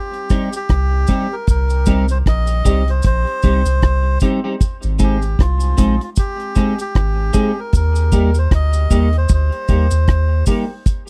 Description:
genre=roots reggae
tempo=77 BPM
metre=4/4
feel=swing 58% on 16ths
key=unclear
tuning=A4 = 444 Hz
part: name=melodica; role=melody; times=0.0-10.4 s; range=F4 to Eb5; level=-27 LUFS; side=equal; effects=tape echo
part: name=deep reggae drum kit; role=drums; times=0.1-11.1 s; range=hi-hat, kick drum, rim click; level=-18 LUFS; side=equal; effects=none
part: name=clean electric guitar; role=accompaniment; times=0.3-10.6 s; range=G3 to Ab4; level=-23 LUFS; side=equal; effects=analog chorus, tape echo
part: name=cabasa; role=percussion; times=0.3-11.1 s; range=none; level=-35 LUFS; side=equal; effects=none
part: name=soft dub sub bass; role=bass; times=0.7-10.4 s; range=Ab1 to Eb2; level=-18 LUFS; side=equal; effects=none
room=small room ambience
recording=dry, close 1970s-style studio recording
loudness=-16 LUFS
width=mono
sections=0.0-11.1 A section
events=none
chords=0.0 Cm; 4.6 Ab; 7.7 Eb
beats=0.70 | 1.49 2.27 3.05 3.83 | 4.61 5.39 6.17 6.95 | 7.73 8.52 9.30 10.08 | 10.86

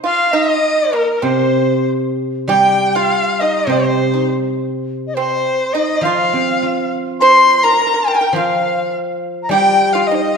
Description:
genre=chinese traditional, Chinese chamber ensemble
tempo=103 BPM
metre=4/4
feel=rubato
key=C yu mode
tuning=A4 = 441 Hz
part: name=pipa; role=second line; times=0.0-10.4 s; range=Bb3 to C5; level=-20 LUFS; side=right 7 dB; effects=none
part: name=reedy large dizi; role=second line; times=0.0-10.4 s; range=Bb4 to C6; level=-17 LUFS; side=left 2 dB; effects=none
part: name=clear erhu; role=melody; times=0.1-10.4 s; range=Bb4 to C6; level=-17 LUFS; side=left 2 dB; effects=none
part: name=guzheng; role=accompaniment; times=1.2-10.4 s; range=C3 to F4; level=-19 LUFS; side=right 1 dB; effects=none
room=wet scoring stage reverb, RT60 1.7 s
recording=dark, warm production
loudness=-13 LUFS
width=side -5 dB against mid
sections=0.0-2.5 A section; 2.5-10.4 B section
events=none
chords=none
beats=| 0.04 0.64 1.24 1.87 | 2.50 3.10 3.69 4.28 | 4.87 5.45 6.04 6.62 | 7.20 7.77 8.34 8.92 | 9.50 10.08

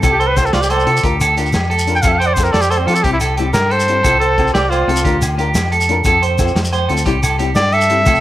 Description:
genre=highlife guitar band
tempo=120 BPM (dotted quarters)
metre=12/8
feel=straight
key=F major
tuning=A4 = 440 Hz
part: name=flamenco guitar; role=accompaniment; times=0.0-8.2 s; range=F3 to Bb4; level=-23 LUFS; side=left 6 dB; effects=none
part: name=clean electric guitar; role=arpeggios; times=0.0-8.2 s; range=G4 to D5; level=-18 LUFS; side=right 4 dB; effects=spring reverb
part: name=fingered electric bass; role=bass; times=0.0-8.2 s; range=C2 to F3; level=-19 LUFS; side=equal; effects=none
part: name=crunchy breakbeat drum kit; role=drums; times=0.0-8.1 s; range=hi-hat, kick drum, snare drum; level=-21 LUFS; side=equal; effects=none
part: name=agogo bells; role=percussion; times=0.0-8.2 s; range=none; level=-26 LUFS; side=left 1 dB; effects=none
part: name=shekere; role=percussion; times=0.0-8.2 s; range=none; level=-23 LUFS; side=left 2 dB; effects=none
part: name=breathy trumpet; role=melody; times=0.1-8.2 s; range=C4 to G5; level=-17 LUFS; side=equal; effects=none
room=light reverb, studio ambience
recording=none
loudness=-12 LUFS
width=side -14 dB against mid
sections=0.0-8.2 A section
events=trumpet solo 0.0-8.2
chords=0.0 F/C; 1.0 Bb/D; 2.0 F; 3.0 C; 4.0 F/C; 5.1 Bb/D; 6.1 F; 7.1 C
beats=| 0.03 0.53 1.04 1.54 | 2.04 2.54 3.04 3.55 | 4.05 4.55 5.05 5.55 | 6.06 6.56 7.06 7.56 | 8.06

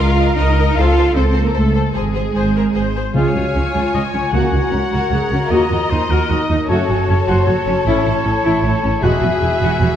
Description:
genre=cinematic, heroic adventure film score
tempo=153 BPM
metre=3/4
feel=straight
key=Db major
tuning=A4 = 440 Hz
part: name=warm symphonic violin section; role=melody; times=0.0-10.0 s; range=Ab4 to Ab5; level=-24 LUFS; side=left 6 dB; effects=none
part: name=clear symphonic violin section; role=second line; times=0.0-10.0 s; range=Ab4 to Eb5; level=-26 LUFS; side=left 4 dB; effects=none
part: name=clear studio viola section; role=accompaniment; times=0.0-9.9 s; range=Db4 to C5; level=-23 LUFS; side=equal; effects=none
part: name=rich symphonic cello section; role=bass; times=0.0-9.9 s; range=Db2 to F4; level=-20 LUFS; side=right 2 dB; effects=none
part: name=rich symphonic double bass section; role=bass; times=0.0-9.9 s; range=E1 to Eb2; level=-18 LUFS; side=right 1 dB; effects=none
part: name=mellow hollow silver concert flute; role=second line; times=3.1-10.0 s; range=Ab5 to Bb5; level=-26 LUFS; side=left 3 dB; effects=none
part: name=mellow French horn section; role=sustained chords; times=3.1-9.2 s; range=Ab3 to Gb4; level=-24 LUFS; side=left 3 dB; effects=none
part: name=timpani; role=percussion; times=3.1-4.9 s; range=Db3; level=-23 LUFS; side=right 1 dB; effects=none
part: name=clear oboe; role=second line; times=3.2-10.0 s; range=Bb4 to F5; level=-25 LUFS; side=right 1 dB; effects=none
part: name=warm clarinet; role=second line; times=3.2-10.0 s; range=Eb4 to Ab4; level=-24 LUFS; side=left 1 dB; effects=none
room=moderate scoring stage reverb, RT60 1.8 s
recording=dark, warm production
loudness=-14 LUFS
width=side -10 dB against mid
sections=0.0-3.1 A section; 3.1-10.0 B section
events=none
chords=0.0 Ebsus2/Db; 0.8 F/Db; 1.9 Ab; 3.1 Db; 4.3 Gb/Db; 5.5 Ebm; 6.7 Gbm; 7.9 A; 9.0 Eadd9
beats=0.37 | 0.76 1.15 1.54 | 1.94 2.34 2.74 | 3.14 3.54 3.94 | 4.33 4.73 5.12 | 5.51 5.91 6.30 | 6.69 7.08 7.47 | 7.86 8.25 8.64 | 9.03 9.42 9.81

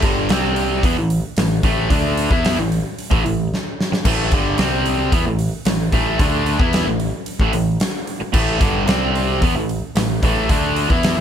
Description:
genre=hard rock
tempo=112 BPM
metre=4/4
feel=straight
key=A minor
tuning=A4 = 439 Hz
part: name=overdriven electric guitar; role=riff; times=0.0-11.2 s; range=G2 to E4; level=-19 LUFS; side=equal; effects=none
part: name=overdriven picked electric bass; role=bass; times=0.0-11.2 s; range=G1 to E2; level=-23 LUFS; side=equal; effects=none
part: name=huge arena drum kit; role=drums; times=0.0-11.2 s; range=crash cymbal, hi-hat, kick drum, snare drum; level=-20 LUFS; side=equal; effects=none
room=little or no reverb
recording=none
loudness=-16 LUFS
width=side -9 dB against mid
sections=0.0-11.2 A section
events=drum fill 3.5-4.1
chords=0.3 C5; 0.8 A5; 4.6 C5; 5.1 A5; 8.9 C5; 9.4 A5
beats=0.30 0.83 1.37 | 1.91 2.44 2.98 3.52 | 4.05 4.59 5.13 5.67 | 6.20 6.74 7.28 7.81 | 8.35 8.89 9.42 9.96 | 10.50 11.04

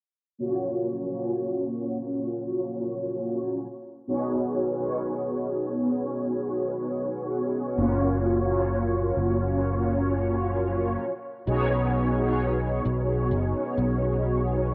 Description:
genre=vaporwave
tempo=65 BPM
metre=4/4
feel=swing 55% on 16ths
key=F# major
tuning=A4 = 441 Hz
part: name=mellow synth brass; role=accompaniment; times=0.4-14.7 s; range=A#3 to C#5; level=-28 LUFS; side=equal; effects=ensemble chorus, analog delay
part: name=fretless electric bass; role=bass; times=7.8-14.7 s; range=F#1 to B1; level=-29 LUFS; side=equal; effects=ensemble chorus
room=moderate lush hall reverb, RT60 2.1 s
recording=cassette tape, low-pass filter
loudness=-27 LUFS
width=mono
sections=0.4-14.7 A section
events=filter sweep 0.4-14.7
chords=0.4 F#maj7; 3.6 B69; 7.8 F#maj7; 11.0 B69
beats=| 0.39 1.32 2.24 3.16 | 4.08 5.01 5.93 6.85 | 7.78 8.70 9.62 10.55 | 11.47 12.39 13.32 14.24

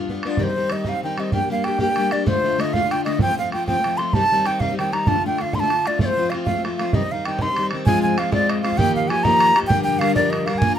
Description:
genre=celtic folk, Celtic jig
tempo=129 BPM (dotted quarters)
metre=6/8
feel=straight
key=C dorian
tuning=A4 = 440 Hz
part: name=picked plugged-in steel-string acoustic guitar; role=accompaniment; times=0.0-10.8 s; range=D2 to Bb4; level=-23 LUFS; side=left 2 dB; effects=none
part: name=bodhran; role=percussion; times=0.1-10.7 s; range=none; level=-25 LUFS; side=right 2 dB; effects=none
part: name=wooden flute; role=melody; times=0.3-10.8 s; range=C5 to C6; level=-20 LUFS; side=right 1 dB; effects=none
room=light reverb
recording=close, detailed microphones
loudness=-18 LUFS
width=side -9 dB against mid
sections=0.4-7.9 A section; 7.9-10.8 B section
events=none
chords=0.4 Cm; 1.3 Gm; 2.3 Dm; 3.2 F; 4.1 Cm; 5.1 Dm; 6.0 F; 6.9 Cm; 7.9 Fm; 8.8 Ebadd9; 9.7 Gm7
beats=| 0.39 0.86 | 1.33 1.80 | 2.27 2.74 | 3.21 3.67 | 4.14 4.61 | 5.08 5.54 | 6.01 6.47 | 6.94 7.40 | 7.86 8.32 | 8.78 9.24 | 9.70 10.16 | 10.62

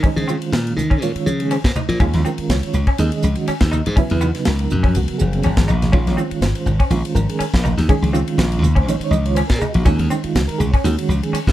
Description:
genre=electric jazz fusion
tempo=122 BPM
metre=4/4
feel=swing 54% on 16ths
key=Bb minor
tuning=A4 = 440 Hz
part: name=semi-hollow electric guitar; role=stabs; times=0.0-11.5 s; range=Cb4 to Eb4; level=-27 LUFS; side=left 2 dB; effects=ensemble chorus
part: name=glassy slap bass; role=bass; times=0.0-11.5 s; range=Gb1 to Eb3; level=-18 LUFS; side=equal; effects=none
part: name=tight funk drum kit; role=drums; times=0.0-11.5 s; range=hi-hat, kick drum, ride cymbal, snare drum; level=-21 LUFS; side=equal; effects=none
part: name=reed electric piano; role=accompaniment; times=0.1-11.5 s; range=Db3 to Eb5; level=-22 LUFS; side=right 4 dB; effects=overdrive, tremolo
part: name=congas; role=percussion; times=0.2-11.2 s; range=none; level=-25 LUFS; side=left 2 dB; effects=none
room=light reverb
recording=dark, warm production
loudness=-15 LUFS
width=side -14 dB against mid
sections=0.0-11.5 A section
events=drum fill 5.4-5.9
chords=0.0 Bbm9; 2.0 Eb7sus2; 4.0 Dbm9; 5.9 Bbm9; 9.9 Ebm9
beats=| 0.04 0.53 1.02 1.51 | 2.01 2.50 2.99 3.48 | 3.97 4.46 4.95 5.44 | 5.93 6.42 6.91 7.41 | 7.90 8.39 8.88 9.37 | 9.86 10.35 10.85 11.34

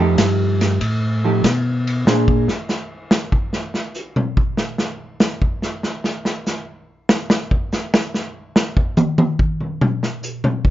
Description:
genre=soul jazz organ trio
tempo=96 BPM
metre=4/4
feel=swing 68% on 8ths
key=unclear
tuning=A4 = 440 Hz
part: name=vintage hollow-body jazz guitar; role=accompaniment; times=0.0-2.5 s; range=F3 to C5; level=-19 LUFS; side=right 2 dB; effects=none
part: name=mellow tonewheel organ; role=bass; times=0.0-2.5 s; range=F2 to B2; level=-18 LUFS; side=equal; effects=slow rotary speaker
part: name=vintage drum kit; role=drums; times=0.2-10.7 s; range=hi-hat, kick drum, ride cymbal, snare drum, toms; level=-18 LUFS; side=equal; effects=none
room=light reverb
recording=nothing above 7.5 kHz, faint mains hum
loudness=-17 LUFS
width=side -13 dB against mid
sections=0.0-10.7 A section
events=drum solo 2.1-10.7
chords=0.0 F9; 2.1 Bb9; 7.1 N.C.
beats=0.19 0.82 1.45 | 2.07 2.70 3.33 3.96 | 4.58 5.21 5.84 6.46 | 7.09 7.72 8.34 8.97 | 9.60 10.23

